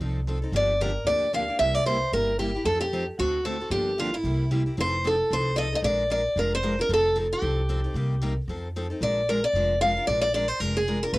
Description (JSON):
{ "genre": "acoustic string swing (jazz manouche)", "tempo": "226 BPM", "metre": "4/4", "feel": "swing 56% on 8ths", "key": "F mixolydian", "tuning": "A4 = 440 Hz", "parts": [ { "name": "picked plugged-in steel-string acoustic guitar", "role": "accompaniment", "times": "0.0-4.6, 11.1-11.2 s", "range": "B2 to B4", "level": "-35 LUFS", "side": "right 3 dB", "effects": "cassette tape" }, { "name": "picked steel-string acoustic guitar", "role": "accompaniment", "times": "0.0-11.2 s", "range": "B2 to Bb4", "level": "-33 LUFS", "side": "left 2 dB", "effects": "cassette tape" }, { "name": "upright bass", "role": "bass", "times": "0.0-11.2 s", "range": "F1 to F2", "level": "-29 LUFS", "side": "equal", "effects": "none" }, { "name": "picked steel-string acoustic guitar", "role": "melody", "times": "0.6-11.2 s", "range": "E4 to F5", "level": "-24 LUFS", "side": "equal", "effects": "cassette tape" } ], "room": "moderate booth ambience, RT60 0.2 s", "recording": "home recording on cassette", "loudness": "-23 LUFS", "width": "side -20 dB against mid", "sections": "0.0-4.8 A section; 4.8-11.2 A section", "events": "none", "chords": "0.0 F7; 0.5 Gm7; 1.6 C7; 2.7 F7; 3.2 D7; 3.7 Gm7; 4.2 C7; 4.8 F7; 5.8 Bb7; 6.9 F7; 8.0 Cm7; 8.5 F7; 9.0 Bb7" }